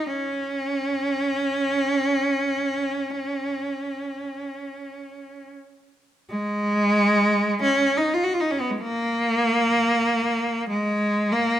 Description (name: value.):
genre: classical, free, expressive piece for unaccompanied cello.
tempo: 30-51 BPM.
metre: 4/4.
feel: rubato.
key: unclear.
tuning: A4 = 440 Hz.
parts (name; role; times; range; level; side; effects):
clear cello; solo; 0.0-11.6 s; Ab3 to Gb4; -21 LUFS; equal; none.
room: moderate recital hall reverb, RT60 1.5 s.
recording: close, detailed microphones.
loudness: -21 LUFS.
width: side -11 dB against mid.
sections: 0.0-6.3 A section; 6.3-11.6 B section.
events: none.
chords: none.